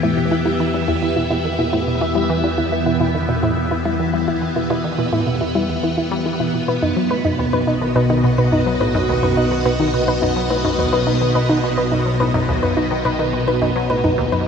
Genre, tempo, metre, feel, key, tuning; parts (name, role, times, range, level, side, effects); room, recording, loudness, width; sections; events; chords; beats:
ambient, sequencer-driven space music; 106 BPM; 4/4; straight; E harmonic minor; A4 = 440 Hz
phased string machine; sustained chords; 0.0-14.5 s; B2 to E5; -20 LUFS; equal; ensemble chorus, phaser
soft round pluck; arpeggios; 0.0-14.4 s; D#4 to B4; -22 LUFS; left 1 dB; chorus, auto-pan, tape echo
tight sequenced synth; riff; 0.0-14.5 s; D#2 to G3; -22 LUFS; right 1 dB; chorus, tape echo
analog drone; bass; 0.0-14.5 s; B1 to E2; -28 LUFS; equal; chorus
wet huge ambient reverb, RT60 7.8 s; dreamy mix soaked in reverb; -16 LUFS; side -6 dB against mid
0.0-14.5 A section
0.0 Em; 6.5 B
0.32 0.88 1.45 | 2.01 2.58 3.15 3.71 | 4.28 4.84 5.41 5.97 | 6.54 7.11 7.67 8.24 | 8.80 9.37 9.94 10.50 | 11.07 11.64 12.20 12.77 | 13.33 13.90 14.47